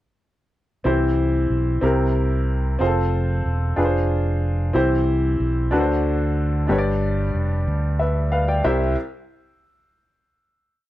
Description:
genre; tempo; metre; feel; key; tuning
slow gospel; 62 BPM (dotted quarters); 6/8; straight; C major; A4 = 440 Hz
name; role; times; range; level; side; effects
clear baby grand piano; accompaniment; 0.8-8.9 s; C2 to G5; -21 LUFS; left 1 dB; none
fingered electric bass; bass; 0.9-8.9 s; E1 to D2; -22 LUFS; equal; none
room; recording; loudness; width
light reverb, studio ambience; dark, warm production; -18 LUFS; side -15 dB against mid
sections
0.9-8.6 verse; 8.6-10.6 final chord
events
none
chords
0.9 C; 1.8 C7; 2.8 F; 3.8 Fm6; 4.8 C; 5.7 D7; 6.7 G; 8.6 C

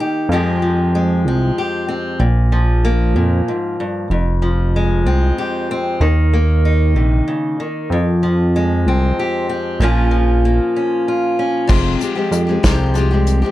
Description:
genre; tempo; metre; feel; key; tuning
indie folk with a building arrangement; 63 BPM (dotted quarters); 6/8; straight; F minor; A4 = 440 Hz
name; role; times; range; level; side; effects
fingerpicked steel-string acoustic guitar; accompaniment; 0.0-13.5 s; F2 to G4; -18 LUFS; left 1 dB; none
chorused synth bass; bass; 0.3-13.4 s; F1 to F2; -15 LUFS; equal; none
picked steel-string acoustic guitar; accompaniment; 11.7-13.5 s; F2 to G4; -18 LUFS; left 4 dB; none
unplugged drum kit; drums; 11.7-13.4 s; crash cymbal, hi-hat, kick drum, snare drum; -17 LUFS; equal; none
room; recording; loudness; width
little or no reverb; dry, close 1970s-style studio recording; -14 LUFS; side -15 dB against mid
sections
0.0-11.7 A section; 11.7-13.5 B section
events
break 10.8-11.7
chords
0.3 Fmadd9; 2.2 Bb5; 4.1 Fmadd9; 6.0 Eb5; 7.9 Fmadd9; 9.8 Bbm; 11.7 Fmadd9

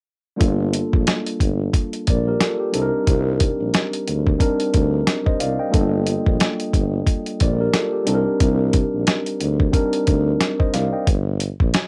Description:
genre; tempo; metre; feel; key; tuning
hip hop, boom-bap hip-hop; 90 BPM; 4/4; swing 58% on 16ths; G minor; A4 = 439 Hz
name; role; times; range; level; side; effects
mellow tine electric piano; accompaniment; 0.4-11.1 s; G3 to G5; -24 LUFS; equal; high-pass filter, low-pass filter, cassette tape
mellow tuba; bass; 0.4-11.7 s; G1 to D2; -24 LUFS; equal; none
dusty soul sampler-style drum kit; drums; 0.4-11.9 s; hi-hat, kick drum, snare drum; -21 LUFS; equal; none
room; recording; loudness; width
light reverb; home recording on cassette; -20 LUFS; mono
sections
0.4-11.9 A section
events
none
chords
0.4 Gm9; 2.7 Cm9; 5.7 Gm9; 8.1 Cm9; 11.1 Gm

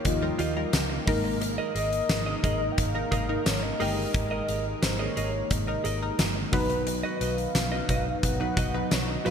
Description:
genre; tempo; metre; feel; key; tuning
1980s-style pop; 88 BPM; 4/4; straight; unclear; A4 = 440 Hz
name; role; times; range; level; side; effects
mellow horn-like synth lead; melody; 0.0-9.3 s; C5 to G5; -33 LUFS; left 1 dB; chorus
FM electric piano; accompaniment; 0.0-9.3 s; F3 to B4; -33 LUFS; left 1 dB; chorus, phaser
lush unison pad; sustained chords; 0.0-9.3 s; Eb3 to Bb4; -36 LUFS; equal; chorus
huge arena drum kit; drums; 0.0-9.3 s; hi-hat, kick drum, snare drum, tambourine; -29 LUFS; equal; gated reverb
vintage muted fingered electric bass; bass; 0.1-9.3 s; G1 to Eb2; -32 LUFS; equal; none
direct-recorded clean electric guitar; riff; 0.2-9.3 s; F4 to Eb5; -36 LUFS; right 4 dB; lush chorus
funky polysynth comp; stabs; 0.2-9.3 s; F#3 to B4; -34 LUFS; equal; chorus
room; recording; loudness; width
moderate lush hall reverb, RT60 2.5 s; bright 1980s-style digital production; -24 LUFS; side -7 dB against mid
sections
0.0-9.3 A section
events
none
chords
0.0 Ebadd9; 1.1 Absus2; 6.5 B

